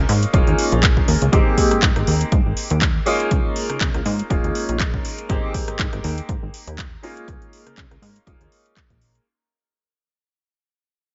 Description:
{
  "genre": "filtered disco house",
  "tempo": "121 BPM",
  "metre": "4/4",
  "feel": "swing 55% on 16ths",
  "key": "Ab major",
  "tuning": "A4 = 441 Hz",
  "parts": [
    { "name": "bright concert grand piano", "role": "accompaniment", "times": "0.0-9.2 s", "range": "Ab3 to G4", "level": "-26 LUFS", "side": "equal", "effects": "phaser, sidechain pumping" },
    { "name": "plucky analog bass", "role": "bass", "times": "0.0-9.2 s", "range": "Eb1 to Db3", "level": "-24 LUFS", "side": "equal", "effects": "tube saturation, sidechain pumping" },
    { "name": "house drum kit", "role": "drums", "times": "0.1-9.2 s", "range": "handclaps, hi-hat, rim click", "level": "-27 LUFS", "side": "equal", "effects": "sidechain pumping on hats" },
    { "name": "electronic kick drum", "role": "drums", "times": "0.3-9.0 s", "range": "none", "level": "-22 LUFS", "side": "equal", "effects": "none" }
  ],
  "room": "little or no reverb",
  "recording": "nothing above 7.6 kHz",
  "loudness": "-19 LUFS",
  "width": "mono",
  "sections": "0.0-9.3 A section",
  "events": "drop 0.0-9.3; fade-out 1.3-9.3",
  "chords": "0.3 Eb9sus4; 1.3 Abmaj9; 3.1 Db69; 4.3 Eb9sus4; 5.3 Abmaj9; 7.0 Db69; 8.3 Eb9sus4"
}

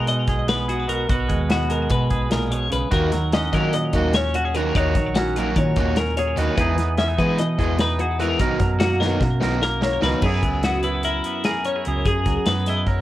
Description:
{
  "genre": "math rock and midwest emo",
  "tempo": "295 BPM (eighths)",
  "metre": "9/8",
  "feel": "straight",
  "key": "unclear",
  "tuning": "A4 = 440 Hz",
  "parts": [
    { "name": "twangy electric guitar", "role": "accompaniment", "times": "0.0-13.0 s", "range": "F#2 to A#4", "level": "-25 LUFS", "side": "right 5 dB", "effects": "none" },
    { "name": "twelve-string electric guitar", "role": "arpeggios", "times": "0.0-13.0 s", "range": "E4 to E5", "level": "-24 LUFS", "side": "left 4 dB", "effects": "digital delay" },
    { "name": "hollow-body short-scale fingered electric bass", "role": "bass", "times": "0.0-13.0 s", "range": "A#1 to E3", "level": "-24 LUFS", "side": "equal", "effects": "none" },
    { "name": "modern studio drum kit", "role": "drums", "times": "0.1-13.0 s", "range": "crash cymbal, hi-hat, kick drum, snare drum", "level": "-25 LUFS", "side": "equal", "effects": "none" },
    { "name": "biting overdriven guitar", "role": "riff", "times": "2.9-10.2 s", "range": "D#3 to E4", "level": "-25 LUFS", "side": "equal", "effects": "none" }
  ],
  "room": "light reverb",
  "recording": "worn, warbling old tape, cassette tape, warbly pitch drift",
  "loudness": "-18 LUFS",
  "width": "side -14 dB against mid",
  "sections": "0.0-10.2 A section; 10.2-13.0 B section",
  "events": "drum fill 9.0-10.2",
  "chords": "0.0 G#m7/B; 2.9 D#m7; 6.6 Emaj7; 8.4 Bmaj7; 10.2 F#9sus4"
}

